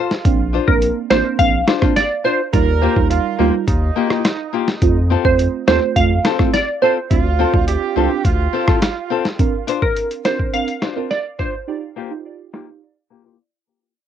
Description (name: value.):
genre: dancehall.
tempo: 105 BPM.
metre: 4/4.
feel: straight.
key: Bb major.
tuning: A4 = 440 Hz.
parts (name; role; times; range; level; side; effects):
warm horn section; second line; 0.0-9.4 s; Eb4 to Bb4; -24 LUFS; right 10 dB; cassette tape, analog delay.
nylon-string guitar; arpeggios; 0.0-13.4 s; Bb3 to C5; -21 LUFS; left 11 dB; cassette tape, analog delay.
lo-fi sampler-style drum kit; drums; 0.1-12.7 s; hi-hat, kick drum, rim click, snare drum; -18 LUFS; equal; cassette tape.
deep mellow chord stab; accompaniment; 0.2-12.8 s; G3 to Bb4; -22 LUFS; right 11 dB; chorus, sidechain pumping, cassette tape.
saturated sub bass; bass; 0.2-8.5 s; A1 to F2; -19 LUFS; equal; none.
glassy wavetable pluck; melody; 0.7-11.5 s; Bb4 to F5; -19 LUFS; right 2 dB; chorus, cassette tape, analog delay.
room: light reverb.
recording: home recording on cassette, low-pass filter.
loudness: -14 LUFS.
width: side -9 dB against mid.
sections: 0.0-9.4 A section; 9.4-14.0 B section.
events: fade-out 9.4-14.0; break 13.4-14.0.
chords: 0.2 Bbadd9; 2.5 Ebadd9; 4.8 F; 7.1 Dm7; 9.4 Bbadd9; 11.7 Ebadd9.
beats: | 0.25 0.82 1.39 1.96 | 2.54 3.11 3.68 4.25 | 4.82 5.39 5.96 6.54 | 7.11 7.68 8.25 8.82 | 9.39 9.96 10.54 11.11 | 11.68 12.25 12.82.